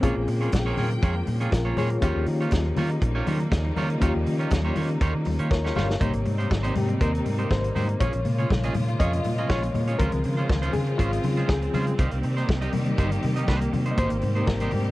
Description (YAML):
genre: disco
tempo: 120 BPM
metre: 4/4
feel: straight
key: unclear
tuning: A4 = 437 Hz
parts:
  - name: barky reed electric piano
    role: accompaniment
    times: 0.0-14.9 s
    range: C3 to F5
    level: -29 LUFS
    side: left 3 dB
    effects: overdrive, fast tremolo
  - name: semi-hollow electric guitar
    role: accompaniment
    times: 0.0-14.9 s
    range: Ab3 to Eb5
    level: -31 LUFS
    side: right 3 dB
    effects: none
  - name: clear studio string section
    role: sustained chords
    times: 0.0-14.9 s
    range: Bb2 to G5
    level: -31 LUFS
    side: right 1 dB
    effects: none
  - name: fingered electric bass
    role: bass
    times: 0.0-14.9 s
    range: G1 to Eb3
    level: -26 LUFS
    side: equal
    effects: none
  - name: warm soul drum kit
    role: drums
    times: 0.0-14.9 s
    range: hi-hat, kick drum, snare drum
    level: -25 LUFS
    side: equal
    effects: none
  - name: congas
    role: percussion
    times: 0.0-14.8 s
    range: none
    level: -34 LUFS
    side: left 4 dB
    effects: none
room: little or no reverb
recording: dry, close 1970s-style studio recording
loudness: -22 LUFS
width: side -17 dB against mid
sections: 0.0-6.0 A section; 6.0-14.9 B section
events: reed electric piano fill 5.3-6.0; drum fill 5.5-6.0; reed electric piano solo 6.0-14.9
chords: 0.0 Bbm7; 2.0 Eb9; 6.0 Abmaj9; 8.0 Bbm7; 10.0 Dbmaj7; 12.0 Cm7; 14.0 Abmaj9